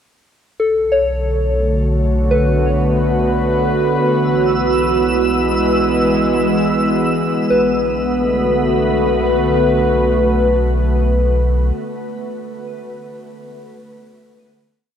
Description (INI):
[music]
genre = ambient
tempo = 52 BPM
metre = 3/4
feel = straight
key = B dorian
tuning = A4 = 440 Hz
[part]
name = warbly tape-like pad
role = sustained chords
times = 1.2-11.7 s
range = D3 to B4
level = -17 LUFS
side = equal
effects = chorus, built-in reverb, phaser, shimmer reverb
[part]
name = soft synth bell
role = arpeggios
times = 0.6-13.5 s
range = A4 to C#5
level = -21 LUFS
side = left 2 dB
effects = chorus, phaser, diffuse ambient delay, shimmer reverb
[part]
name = warm sub bass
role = bass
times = 0.6-11.7 s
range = B1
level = -20 LUFS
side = equal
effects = none
[part]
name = organ-like drone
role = drone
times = 2.3-11.8 s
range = B3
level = -23 LUFS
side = right 1 dB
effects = ensemble chorus, built-in reverb
[part]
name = twinkling granular texture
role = texture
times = 4.3-7.5 s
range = E6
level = -24 LUFS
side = right 1 dB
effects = built-in reverb, shimmer reverb
[sound]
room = wet huge ambient reverb, RT60 8.4 s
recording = none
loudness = -13 LUFS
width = side -8 dB against mid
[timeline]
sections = 0.6-7.5 A section; 7.5-11.0 final chord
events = fade-in on synth drone 0.6-7.5; fade-out on sub bass 0.6-7.5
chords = 0.6 Bm7; 4.0 Eadd9/B; 7.5 Bm7